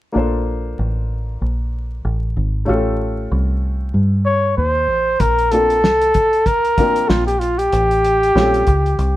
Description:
hip hop, jazz-hop; 95 BPM; 4/4; swing 59% on 16ths; A4 = 441 Hz
dark upright piano; accompaniment; 0.1-8.6 s; G3 to C5; -21 LUFS; left 2 dB
deep dub fingered electric bass; bass; 0.2-9.2 s; Ab1 to G2; -19 LUFS; equal
trumpet with bucket mute; melody; 4.3-9.2 s; F4 to C#5; -15 LUFS; equal
cloth-damped thuddy drum kit; drums; 5.2-9.2 s; hi-hat, kick drum, snare drum; -20 LUFS; equal
light reverb; band playing live in one room, vinyl crackle; -15 LUFS; side -15 dB against mid
0.1-5.2 A section; 5.2-9.2 B section
0.1 Bbmaj7; 2.7 A7alt; 5.2 Bbmaj7; 7.7 A7alt

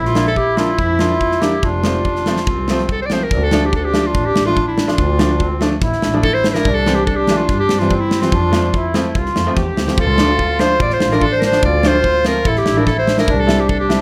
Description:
klezmer; 144 BPM; 4/4; straight; F major, D minor from 3.3 s; A4 = 440 Hz
bright clarinet; melody; 0.0-14.0 s; E4 to D5; -20 LUFS; equal
accordion; second line; 0.0-14.0 s; C4 to G4; -24 LUFS; equal
muted double bass; bass; 0.0-13.8 s; F1 to G2; -23 LUFS; equal
gated 80s drum kit; drums; 0.1-14.0 s; kick drum, snare drum; -22 LUFS; equal
bright upright piano; accompaniment; 0.2-14.0 s; E3 to E4; -23 LUFS; equal
moderate studio reverb, RT60 0.6 s; -16 LUFS; mono
0.0-3.3 A section; 3.3-14.0 B section
0.0 Bb; 1.6 F; 3.3 Dm; 6.7 C; 8.3 F; 10.0 Dm; 13.3 C

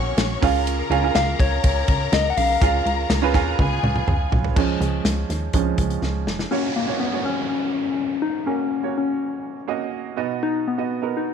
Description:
piano-driven pop; 123 BPM; 4/4; straight; F# major; A4 = 440 Hz
soft struck synth lead; melody; 0.0-3.1, 6.5-11.3 s; A#3 to F#5; -24 LUFS; left 6 dB; chorus
bright studio violin section; second line; 0.0-4.3 s; G#4 to C#6; -28 LUFS; left 12 dB
clear upright piano; accompaniment; 0.0-11.3 s; A#2 to G#5; -25 LUFS; right 11 dB
plucky analog bass; bass; 0.0-6.5 s; E#1 to D#2; -24 LUFS; equal
natural country drum kit; drums; 0.2-6.5 s; crash cymbal, hi-hat, kick drum, ride cymbal, snare drum, toms; -23 LUFS; equal
downlifter; sound effects; 6.5-10.4 s; -31 LUFS; equal
light reverb, studio reverb; 1960s-style stereo with parts hard left and right; -19 LUFS; side -7 dB against mid
0.0-4.6 A section; 4.6-6.5 B section; 6.5-11.3 C section
drum fill 3.6-4.6, 6.0-6.5; upright piano solo 4.6-6.5
0.4 C#; 6.5 F#; 10.2 B

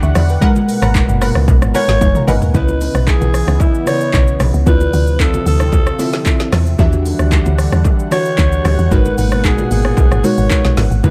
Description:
amapiano; 113 BPM; 4/4; straight; A4 = 440 Hz
glassy digital keys; accompaniment; 0.0-11.1 s; C#3 to D6; -22 LUFS; equal; chorus
lush unison pad; sustained chords; 0.0-11.1 s; A#2 to F#5; -26 LUFS; equal; chorus, sidechain pumping
woody log drum bass; bass; 0.0-11.1 s; F#1 to E2; -17 LUFS; equal
deep house drum kit; drums; 0.0-11.1 s; handclaps, hi-hat, kick drum, rim click, shaker, snare drum, toms; -18 LUFS; equal
bongos and congas; percussion; 0.2-11.1 s; -27 LUFS; equal
punchy chord stab; stabs; 0.4-2.4 s; A#4 to F#5; -26 LUFS; equal; chorus, tape echo
breathy alto saxophone; melody; 1.8-11.1 s; E4 to C#5; -22 LUFS; equal; tape echo
little or no reverb; dark, warm production; -14 LUFS; mono
0.0-2.5 A section; 2.5-11.1 B section
drop 0.0-2.5; synth keys fill 1.5-2.5; drum fill 2.0-2.5
0.4 G#m9; 2.5 C#m9; 4.7 Dm9; 6.8 Em9; 8.9 G#m9

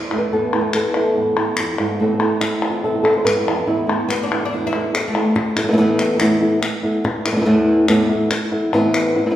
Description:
flamenco; 143 BPM; 4/4; straight; A4 = 435 Hz
flamenco guitar; melody; 0.0-9.3 s; E2 to C5; -17 LUFS; equal
flamenco guitar; stabs; 0.1-5.4 s; E2 to E4; -25 LUFS; right 4 dB
palmas hand claps; percussion; 0.1-9.2 s; -24 LUFS; left 3 dB
oud; second line; 4.1-5.3 s; A3 to E4; -23 LUFS; left 2 dB
wet recital hall reverb, RT60 1.6 s; recorded in a church or concert hall; -16 LUFS; side -12 dB against mid
0.0-5.4 A section; 5.4-9.4 B section
0.0 Esus4; 2.0 Amadd9; 3.7 Esus4; 8.7 Amadd9

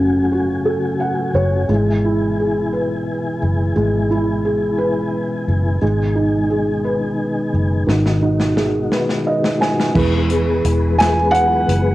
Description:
six-eight pop ballad; 58 BPM (dotted quarters); 6/8; straight; E major; A4 = 440 Hz
felt-muted upright piano; accompaniment; 0.0-11.9 s; C#3 to G#5; -18 LUFS; right 1 dB; cassette tape, plate reverb
mellow tonewheel organ; sustained chords; 0.0-11.9 s; B2 to G#5; -21 LUFS; left 2 dB; chorus vibrato, fast rotary speaker, cassette tape, plate reverb
vintage muted fingered electric bass; bass; 0.0-11.9 s; E1 to G#1; -20 LUFS; equal
natural country drum kit; drums; 7.9-11.8 s; crash cymbal, hi-hat, kick drum, snare drum; -22 LUFS; left 1 dB; cassette tape
moderate small room ambience, RT60 0.5 s; home recording on cassette; -15 LUFS; side -16 dB against mid
0.0-10.0 A section; 10.0-11.9 B section
felt piano fill 0.7-1.7, 8.9-10.0; drum fill 7.9-10.0; felt piano solo 10.0-11.9
0.0 F#m; 1.7 E; 5.8 G#m; 10.0 E

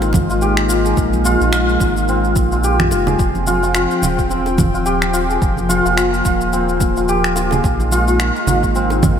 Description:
organic downtempo; 108 BPM; 4/4; swing 57% on 16ths; F minor; A4 = 443 Hz
warm analog pad; sustained chords; 0.0-9.2 s; F3 to G5; -21 LUFS; left 1 dB; chorus, sidechain pumping
santur; arpeggios; 0.0-9.2 s; C4 to Ab4; -18 LUFS; left 1 dB; digital delay
round analog bass; bass; 0.0-9.2 s; Eb1 to Bb1; -20 LUFS; equal; sidechain pumping
electronic shaker, congas and finger snaps; drums; 0.0-9.2 s; -22 LUFS; right 1 dB
bongos and congas; percussion; 0.0-9.2 s; -26 LUFS; right 5 dB
electronic kick drum; drums; 0.1-9.2 s; -20 LUFS; equal; overdrive
moderate lush hall reverb, RT60 2.7 s; bright 1980s-style digital production; -13 LUFS; side -8 dB against mid
0.0-9.2 A section
0.0 Bb7sus4; 3.2 Fm7; 7.6 Bb7sus4

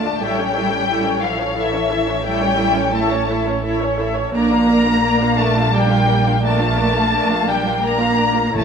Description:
cinematic, emotional film score for orchestra; 86 BPM; 3/4; rubato; A4 = 444 Hz
muted studio violin section; melody; 0.0-8.6 s; E5 to Bb5; -20 LUFS; left 4 dB
muted symphonic violin section; second line; 0.0-8.6 s; F4 to F5; -25 LUFS; left 4 dB
muted symphonic viola section; accompaniment; 0.0-8.6 s; A3 to C#5; -22 LUFS; right 2 dB
muted studio double bass section; bass; 0.0-8.6 s; A1 to D2; -23 LUFS; right 3 dB
muted symphonic cello section; bass; 0.0-8.6 s; E3 to Bb3; -21 LUFS; right 2 dB
timpani; percussion; 8.5-8.6 s; A2; -22 LUFS; equal
moderate scoring stage reverb, RT60 1.6 s; -15 LUFS; side -6 dB against mid
0.0-8.6 A section
0.2 A; 4.3 Bb

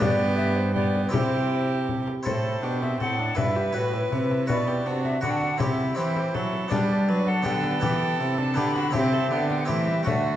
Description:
classical, renaissance-style consort dance; 161 BPM; 3/4; straight; A4 = 442 Hz
mellow hollow tenor recorder; melody; 0.0-10.4 s; B4 to B5; -29 LUFS; left 3 dB
rich violin; second line; 0.0-10.4 s; F#4 to B4; -31 LUFS; right 5 dB
harpsichord; accompaniment; 0.0-10.4 s; G2 to G5; -31 LUFS; equal
warm viola; accompaniment; 0.0-10.4 s; G3 to G4; -31 LUFS; left 1 dB
rich cello; bass; 0.0-10.4 s; G2 to G3; -27 LUFS; right 1 dB
frame drum; percussion; 0.0-10.2 s; -31 LUFS; left 4 dB
wet recital hall reverb, RT60 1.6 s; dark, warm production; -22 LUFS; side -12 dB against mid
0.0-2.3 A section; 2.3-10.4 B section
0.0 G; 1.1 C; 2.3 Am; 3.4 Em/G; 4.5 Bm; 5.6 C; 6.7 G; 7.8 Em; 8.9 C

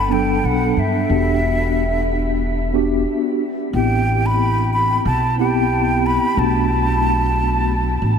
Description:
sunset chillout; 91 BPM; 4/4; swing 57% on 16ths; A dorian; A4 = 439 Hz
breathy mellow silver concert flute; melody; 0.0-8.2 s; E5 to B5; -21 LUFS; right 1 dB; shimmer reverb, analog delay
mellow tine electric piano; accompaniment; 0.0-8.2 s; F#3 to A4; -20 LUFS; moving between left 4 dB and right 3 dB; medium stereo tremolo, auto-pan, shimmer reverb, analog delay
upright bass; bass; 0.0-8.2 s; E1 to G2; -20 LUFS; equal
wet huge ambient reverb, RT60 8.4 s; dreamy mix soaked in reverb; -16 LUFS; side -7 dB against mid
0.0-8.2 A section
0.0 Gmaj7; 1.1 Em7; 3.4 Am9; 6.4 Bm7

